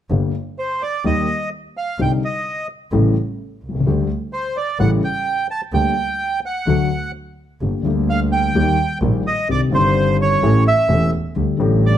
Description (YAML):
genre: tango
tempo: 128 BPM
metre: 4/4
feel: rubato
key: G minor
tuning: A4 = 440 Hz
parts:
  - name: dark concert grand piano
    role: accompaniment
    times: 0.1-12.0 s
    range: E1 to G4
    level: -19 LUFS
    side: left 3 dB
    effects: none
  - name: warm double bass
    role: bass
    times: 0.1-12.0 s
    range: E1 to Eb2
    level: -20 LUFS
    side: right 2 dB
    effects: none
  - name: bandoneon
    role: melody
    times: 0.6-12.0 s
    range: C5 to A5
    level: -20 LUFS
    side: right 2 dB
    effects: none
room: light reverb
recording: dark, warm production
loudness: -16 LUFS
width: side -10 dB against mid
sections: 0.1-7.6 A section; 7.6-12.0 B section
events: none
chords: 0.1 Gm; 1.1 Eb; 2.0 Cmadd9; 2.9 A7; 3.9 Dsus4; 4.8 A7; 5.7 Gm/D; 6.7 D; 7.6 Gm; 8.6 Eb; 9.5 Cmadd9; 10.4 A7; 11.4 Dsus4